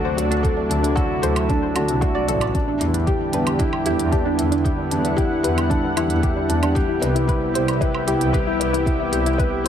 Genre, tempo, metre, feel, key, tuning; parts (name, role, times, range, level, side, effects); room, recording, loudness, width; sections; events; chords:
piano and strings electronica; 114 BPM; 4/4; straight; E minor; A4 = 439 Hz
lush unison pad; sustained chords; 0.0-9.7 s; C3 to F#5; -25 LUFS; equal; chorus, sidechain pumping
soft round pluck; arpeggios; 0.0-9.7 s; D4 to D5; -26 LUFS; equal; chorus, sidechain pumping, ping-pong delay
felt-muted upright piano; riff; 0.0-9.7 s; D4 to D5; -24 LUFS; left 1 dB; ping-pong delay
clear chamber double bass section; bass; 0.2-9.7 s; A1 to E2; -24 LUFS; equal; sidechain pumping
electronic hi-hat and woodblock; drums; 0.2-9.7 s; -30 LUFS; right 3 dB
electronic kick drum; drums; 0.4-9.5 s; -22 LUFS; equal
light reverb; -18 LUFS; side -9 dB against mid
0.0-9.7 A section
0.0 D7; 2.5 Em7; 6.8 Cmaj7